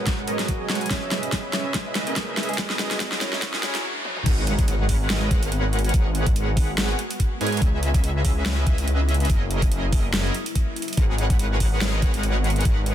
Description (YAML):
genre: future bass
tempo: 143 BPM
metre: 4/4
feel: swing 55% on 16ths, half-time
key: G# minor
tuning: A4 = 440 Hz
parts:
  - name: warm concert grand piano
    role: melody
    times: 0.0-3.5 s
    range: F#3 to C#5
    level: -36 LUFS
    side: left 1 dB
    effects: sidechain pumping, ping-pong delay
  - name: shimmering ambient pad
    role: sustained chords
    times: 0.0-12.9 s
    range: F#2 to F#4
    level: -37 LUFS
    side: left 1 dB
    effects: chorus, built-in reverb, sidechain pumping
  - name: Celtic harp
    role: arpeggios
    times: 0.0-6.2 s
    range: F#4 to G#5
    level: -38 LUFS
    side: equal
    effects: sidechain pumping, dub echo
  - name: big bright polysynth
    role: riff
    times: 0.0-12.9 s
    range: F#3 to G#5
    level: -28 LUFS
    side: right 1 dB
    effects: lush chorus, sidechain pumping, dub echo
  - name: riser and impact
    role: sound effects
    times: 1.1-5.9 s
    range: none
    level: -35 LUFS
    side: equal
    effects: none
  - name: big-room dance drum kit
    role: drums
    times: 0.1-12.9 s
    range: crash cymbal, hi-hat, snare drum, toms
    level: -27 LUFS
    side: equal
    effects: none
  - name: electronic kick drum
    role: drums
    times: 0.1-12.7 s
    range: none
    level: -22 LUFS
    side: equal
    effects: none
  - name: wide detuned saw bass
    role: bass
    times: 4.3-12.9 s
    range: F#1 to G#2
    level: -24 LUFS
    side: equal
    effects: chorus, sidechain pumping
room: little or no reverb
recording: dense, heavily limited modern master, high-pass filter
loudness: -20 LUFS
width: side -11 dB against mid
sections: 0.0-4.3 A section; 4.3-12.9 B section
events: build-up 0.0-4.3; drum fill 0.0-3.8, 4.1; filter sweep on analog polysynth 0.0-4.3; filter sweep on ambient pad 0.0-4.3; filter sweep 0.0-4.3; stop 3.8-4.3; drop 4.3-12.9; impact 4.3-5.9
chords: 0.0 G#m11; 0.9 C#m9; 2.6 F#13; 4.3 G#m11; 7.6 C#m9; 9.3 F#13; 11.0 G#m11